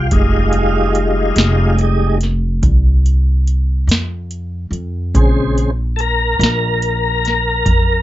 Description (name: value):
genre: slow blues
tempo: 48 BPM (dotted quarters)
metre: 12/8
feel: straight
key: F minor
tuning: A4 = 441 Hz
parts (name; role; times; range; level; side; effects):
- tonewheel organ; sustained chords; 0.0-8.0 s; Db3 to Bb4; -17 LUFS; left 1 dB; slow rotary speaker, chorus vibrato
- upright bass; bass; 0.0-8.0 s; F1 to F2; -16 LUFS; equal; none
- booming analog drum machine; drums; 0.1-7.9 s; hi-hat, kick drum, snare drum; -16 LUFS; equal; overdrive
room: little or no reverb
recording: nothing above 7.7 kHz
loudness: -13 LUFS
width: side -14 dB against mid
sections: 0.0-8.0 A section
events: tonewheel organ solo 0.0-8.0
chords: 0.0 Fm9; 5.1 Bbm9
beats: | 0.12 1.37 2.63 3.89 | 5.14 6.40 7.66